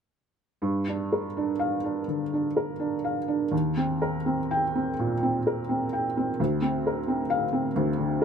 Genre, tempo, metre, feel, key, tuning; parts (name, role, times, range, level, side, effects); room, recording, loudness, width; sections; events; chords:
neoclassical minimalist piano; 84 BPM; 4/4; rubato; G minor; A4 = 444 Hz
felt-muted upright piano; solo; 0.6-8.2 s; D2 to G5; -24 LUFS; equal
light reverb; -25 LUFS; side -7 dB against mid
0.6-8.2 A section
0.6 Gm7; 3.5 Eb6; 6.4 Bbadd9/D